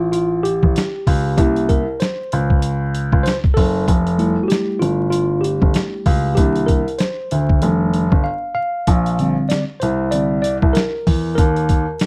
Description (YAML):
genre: hip hop, jazz-hop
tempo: 96 BPM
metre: 4/4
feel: swing 60% on 16ths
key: unclear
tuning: A4 = 440 Hz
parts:
  - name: mellow tine electric piano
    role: accompaniment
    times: 0.0-12.1 s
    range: D3 to F5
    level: -23 LUFS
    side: equal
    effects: none
  - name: dark baby grand piano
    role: bass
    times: 0.0-11.8 s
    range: F1 to E2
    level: -21 LUFS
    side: equal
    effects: none
  - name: boom bap sampler-style drum kit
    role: drums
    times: 0.1-12.1 s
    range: hi-hat, kick drum, snare drum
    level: -20 LUFS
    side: equal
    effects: none
room: digital ambience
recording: dry, close 1970s-style studio recording, vinyl crackle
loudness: -18 LUFS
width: mono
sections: 0.0-12.1 A section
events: tine electric piano solo 0.0-12.1; break 8.3-8.9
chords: 0.0 G7sus2; 1.4 C7b9; 3.9 Fmaj9; 6.4 Cm9; 7.6 F13; 8.9 Bb6; 11.4 Eb5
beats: 0.13 0.75 | 1.38 2.00 2.63 3.25 | 3.88 4.50 5.13 5.75 | 6.38 7.00 7.63 8.25 | 8.88 9.50 10.13 10.75 | 11.38 12.00